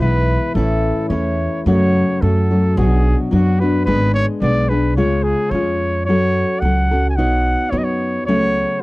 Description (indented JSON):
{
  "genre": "mexican folk, mariachi",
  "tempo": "109 BPM",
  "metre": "2/4",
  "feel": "straight",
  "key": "F# minor",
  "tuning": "A4 = 441 Hz",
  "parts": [
    { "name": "warm trumpet", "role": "melody", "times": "0.0-8.8 s", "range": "F#4 to G#5", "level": "-21 LUFS", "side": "equal", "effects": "none" },
    { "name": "nylon-string guitar", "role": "accompaniment", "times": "0.0-8.8 s", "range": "F#2 to C#5", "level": "-18 LUFS", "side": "left 1 dB", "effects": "none" },
    { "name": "upright bass", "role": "bass", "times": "0.0-8.6 s", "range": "G#1 to F#2", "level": "-18 LUFS", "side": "equal", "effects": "none" }
  ],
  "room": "little or no reverb",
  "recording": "dry, close 1970s-style studio recording",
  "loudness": "-14 LUFS",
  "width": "side -20 dB against mid",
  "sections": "0.0-1.7 A section; 1.7-8.8 B section",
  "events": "none",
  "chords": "0.0 E; 0.5 A; 1.7 F#m; 2.8 Bm; 3.9 G#dim; 5.0 C#; 6.1 F#m; 7.2 Badd9; 8.3 F#m/C#",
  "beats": "| 0.54 1.10 | 1.66 2.21 | 2.77 3.32 | 3.87 4.41 | 4.96 5.52 | 6.07 6.62 | 7.17 7.72 | 8.27 8.82"
}